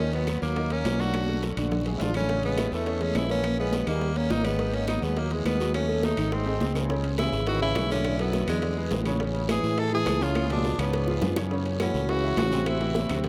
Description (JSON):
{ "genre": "Afro-Cuban jazz", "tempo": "208 BPM", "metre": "4/4", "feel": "straight", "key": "G# minor, C# minor from 6.9 s", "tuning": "A4 = 442 Hz", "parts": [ { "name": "edgy tenor saxophone", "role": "melody", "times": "0.0-13.2 s", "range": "G#3 to A4", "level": "-33 LUFS", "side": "equal", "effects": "analog delay" }, { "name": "mellow trombone", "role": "second line", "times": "0.0-13.2 s", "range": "E2 to D4", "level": "-35 LUFS", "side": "equal", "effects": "analog delay" }, { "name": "clear concert grand piano", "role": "accompaniment", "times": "0.0-13.3 s", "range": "B#2 to D#5", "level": "-34 LUFS", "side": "equal", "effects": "analog chorus" }, { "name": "fingered electric bass", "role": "bass", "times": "0.0-13.3 s", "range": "G#1 to A2", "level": "-31 LUFS", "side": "equal", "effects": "none" }, { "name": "bongos", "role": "percussion", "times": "0.1-13.3 s", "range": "none", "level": "-39 LUFS", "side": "equal", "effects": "none" }, { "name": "congas", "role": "percussion", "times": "0.1-13.3 s", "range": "none", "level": "-37 LUFS", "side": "equal", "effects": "none" }, { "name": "timbales", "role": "percussion", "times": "0.1-13.3 s", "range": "none", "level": "-40 LUFS", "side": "equal", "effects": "none" }, { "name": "claves", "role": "percussion", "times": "0.3-13.2 s", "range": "none", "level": "-49 LUFS", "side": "equal", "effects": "none" }, { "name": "guiro", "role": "percussion", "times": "0.3-13.3 s", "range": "none", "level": "-45 LUFS", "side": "equal", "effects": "none" } ], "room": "moderate huge ambient reverb, RT60 4.1 s", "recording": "dreamy mix soaked in reverb", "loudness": "-26 LUFS", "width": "mono", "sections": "0.0-6.9 A section; 6.9-13.3 B section", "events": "drum fill 1.1-2.3, 6.5-6.9, 10.4-11.5", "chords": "0.0 D#m7; 1.1 Bm7; 1.7 A#7; 2.3 Amaj7; 3.4 C#m13/A#; 4.0 D#5; 4.6 G#m7; 5.7 D#m7b5; 6.3 G#; 6.9 C#m7; 8.1 Bm7; 8.6 E7; 9.2 Amaj7; 10.4 C#7b9; 11.5 F#m7; 12.7 Am7" }